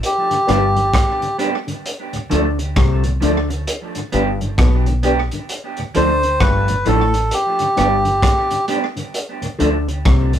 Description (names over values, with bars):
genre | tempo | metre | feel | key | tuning
roots reggae | 66 BPM | 4/4 | swing 61% on 16ths | D dorian | A4 = 440 Hz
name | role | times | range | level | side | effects
crunchy breakbeat drum kit | drums | 0.0-10.4 s | hi-hat, kick drum, rim click | -21 LUFS | equal | tape echo
melodica | melody | 0.1-8.7 s | G4 to C5 | -17 LUFS | equal | none
mellow tonewheel organ | accompaniment | 0.3-10.4 s | D2 to D4 | -24 LUFS | left 3 dB | chorus vibrato, slow rotary speaker
electric guitar at the edge of break-up | accompaniment | 0.5-9.7 s | F3 to G4 | -24 LUFS | right 6 dB | tape echo
overdriven clav | riff | 0.5-10.3 s | G2 to D3 | -22 LUFS | left 6 dB | none
deep dub fingered electric bass | bass | 0.5-10.4 s | G1 to D2 | -19 LUFS | equal | none
room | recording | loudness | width
light reverb | band playing live in one room | -15 LUFS | side -10 dB against mid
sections
0.0-10.4 A section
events
none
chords
0.0 G; 1.9 Dm; 3.7 G; 5.5 Dm; 7.3 G; 9.1 Dm